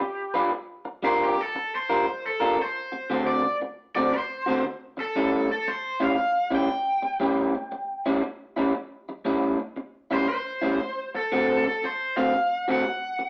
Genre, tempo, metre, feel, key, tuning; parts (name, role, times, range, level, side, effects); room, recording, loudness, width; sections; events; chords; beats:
blues; 117 BPM; 4/4; swing 66% on 8ths; D mixolydian; A4 = 441 Hz
raw garage guitar; melody; 0.0-13.3 s; G4 to G5; -29 LUFS; equal; overdrive
electric guitar through a small old amp; riff; 0.0-13.2 s; A2 to B4; -27 LUFS; equal
moderate studio reverb, RT60 0.7 s; -26 LUFS; mono
0.0-13.3 A section
overdriven electric guitar solo 0.0-13.3
0.0 G7; 0.5 Gm7; 2.6 D7; 4.6 A7; 10.8 D7
0.01 | 0.52 1.04 1.55 2.06 | 2.58 3.09 3.61 4.12 | 4.63 5.15 5.66 6.17 | 6.69 7.20 7.71 8.23 | 8.74 9.25 9.77 10.28 | 10.79 11.30 11.82 12.33 | 12.84